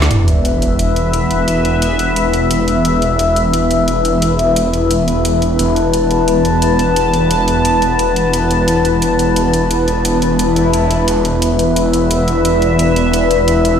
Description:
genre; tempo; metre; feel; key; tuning
dark technical drum and bass; 175 BPM; 4/4; straight; unclear; A4 = 440 Hz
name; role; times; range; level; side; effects
sweeping resonant pad; sustained chords; 0.0-13.8 s; E3 to A5; -16 LUFS; left 1 dB; chorus
snarling distorted saw bass; bass; 0.0-13.8 s; E1; -17 LUFS; equal; overdrive
drum and bass drum kit; drums; 0.0-13.7 s; hi-hat, snare drum; -23 LUFS; equal; overdrive, studio reverb
sub drop and swell; sound effects; 0.1-1.5, 10.5-11.1 s; none; -18 LUFS; equal; none
warbly tape-like pad; texture; 0.8-13.8 s; E4 to A5; -18 LUFS; left 2 dB; chorus, built-in reverb
room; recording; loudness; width
moderate digital room reverb, RT60 1.0 s, digital ambience; played on a big sound system in a bare room, stone room reverb; -12 LUFS; side -8 dB against mid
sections
0.1-13.8 A section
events
impact 0.1-1.5; swell 10.5-11.1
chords
0.1 E5

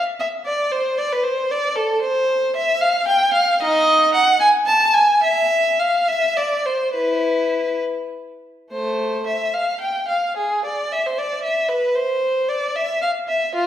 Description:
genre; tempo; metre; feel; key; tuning
classical, baroque-style suite movement for unaccompanied violin; 65-78 BPM (dotted quarters); 6/8; rubato; unclear; A4 = 440 Hz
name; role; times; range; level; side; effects
rich violin; solo; 0.0-13.7 s; A3 to A5; -17 LUFS; equal; none
room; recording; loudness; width
wet recital hall reverb, RT60 1.5 s; heard from further back in the room; -17 LUFS; side -11 dB against mid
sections
0.0-8.7 A section; 8.7-13.7 A section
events
none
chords
none

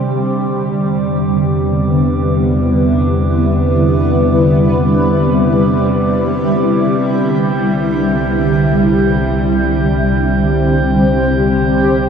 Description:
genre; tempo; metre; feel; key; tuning
ambient; free time; none; none; unclear; A4 = 442 Hz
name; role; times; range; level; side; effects
shimmering ambient pad; sustained chords; 0.0-12.1 s; D3 to C5; -14 LUFS; equal; chorus, built-in reverb, phaser
round analog bass; bass; 0.0-12.1 s; C2 to E2; -20 LUFS; equal; none
bowed-like drone; drone; 0.0-12.1 s; C3 to G3; -18 LUFS; right 1 dB; built-in reverb
glass harmonica; texture; 0.0-12.1 s; D5 to G6; -24 LUFS; right 1 dB; none
room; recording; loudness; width
wet huge ambient reverb, RT60 8.1 s; none; -11 LUFS; side -7 dB against mid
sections
0.0-12.1 A section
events
fade-in on glass harmonica 0.0-12.1; fade-out on analog synth bass 0.0-12.1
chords
0.1 Em7; 7.1 Csus2

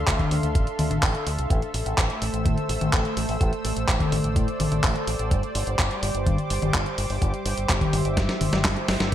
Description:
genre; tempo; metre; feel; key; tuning
italo disco; 126 BPM; 4/4; straight; unclear; A4 = 438 Hz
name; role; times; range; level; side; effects
lush unison pad; sustained chords; 0.0-9.1 s; G3 to E6; -29 LUFS; equal; chorus
fingered electric bass with an envelope filter; bass; 0.0-9.1 s; G1 to A2; -28 LUFS; equal; none
clean 12-bit digital drum machine; drums; 0.1-9.1 s; handclaps, hi-hat, snare drum, toms; -25 LUFS; left 1 dB; gated reverb
electronic kick drum; drums; 0.1-9.1 s; none; -24 LUFS; equal; none
room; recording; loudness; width
light reverb, digital ambience; bright 1980s-style digital production; -21 LUFS; side -11 dB against mid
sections
0.0-9.1 A section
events
drum fill 8.2-9.1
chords
0.0 Dm7; 1.5 Am; 5.3 Gsus4

